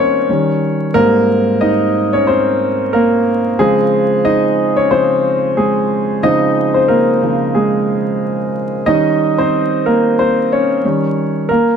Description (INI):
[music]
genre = R&B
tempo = 91 BPM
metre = 4/4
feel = swing 57% on 16ths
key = unclear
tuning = A4 = 440 Hz
[part]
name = warm concert grand piano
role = solo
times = 0.0-11.8 s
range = Ab2 to Eb5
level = -12 LUFS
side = equal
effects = none
[sound]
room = moderate small room reverb, RT60 0.5 s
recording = dark, warm production, vinyl crackle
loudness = -12 LUFS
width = side -7 dB against mid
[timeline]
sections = 0.0-11.8 A section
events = grand piano solo 0.0-11.8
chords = 0.3 Eb7; 0.9 Abmaj9; 3.6 Dbmaj9; 8.9 Eb6; 10.8 Eb7